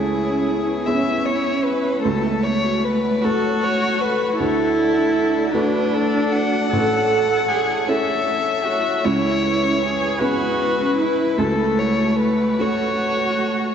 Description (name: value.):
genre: neoclassical piano and strings.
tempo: 51 BPM (dotted quarters).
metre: 6/8.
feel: rubato.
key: unclear.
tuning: A4 = 440 Hz.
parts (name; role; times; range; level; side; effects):
warm violin; melody; 0.0-13.7 s; G#4 to F#5; -22 LUFS; left 4 dB; tape echo.
warm cello; second line; 0.0-13.7 s; A3 to A4; -22 LUFS; right 3 dB; none.
felt-muted upright piano; accompaniment; 0.0-13.7 s; A1 to A4; -25 LUFS; right 2 dB; wide subtle chorus.
shimmering ambient pad; sustained chords; 0.0-13.7 s; G#3 to D5; -29 LUFS; equal; chorus, built-in reverb.
vibraphone with soft mallets; arpeggios; 0.1-13.7 s; C#4 to A5; -28 LUFS; left 2 dB; tape echo.
room: wet lush hall reverb, RT60 2.9 s.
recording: dreamy mix soaked in reverb, nothing above 7.9 kHz.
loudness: -17 LUFS.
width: side -8 dB against mid.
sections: 0.0-13.7 A section.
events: none.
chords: 0.0 C#m7; 2.0 F#m/C#; 4.4 Dadd9; 6.7 A; 9.0 C#m7; 11.4 F#m/C#.